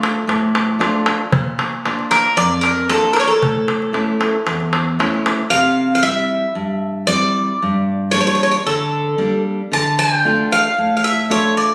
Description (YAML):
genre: greek folk, Greek bouzouki band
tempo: 114 BPM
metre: 4/4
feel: straight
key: unclear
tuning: A4 = 440 Hz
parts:
  - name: nylon-string guitar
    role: accompaniment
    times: 0.0-11.7 s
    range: E2 to F4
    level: -22 LUFS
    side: equal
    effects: none
  - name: darbuka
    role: percussion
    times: 0.0-5.5 s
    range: none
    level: -22 LUFS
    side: equal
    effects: none
  - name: Greek bouzouki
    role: melody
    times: 2.1-11.7 s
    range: A4 to A5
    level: -19 LUFS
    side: equal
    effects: plate reverb
room: moderate studio reverb, RT60 0.6 s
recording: recorded on a phone in the room, studio reverb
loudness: -17 LUFS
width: mono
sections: 0.0-5.5 A section; 5.5-11.7 B section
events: none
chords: 0.0 Dm; 1.3 Bb; 3.4 A; 5.5 C; 7.6 Gm; 9.7 Dm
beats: 0.28 0.80 | 1.33 1.85 2.37 2.90 | 3.42 3.94 4.47 4.99 | 5.51 6.04 6.56 7.09 | 7.61 8.14 8.66 9.19 | 9.71 10.24 10.76 11.29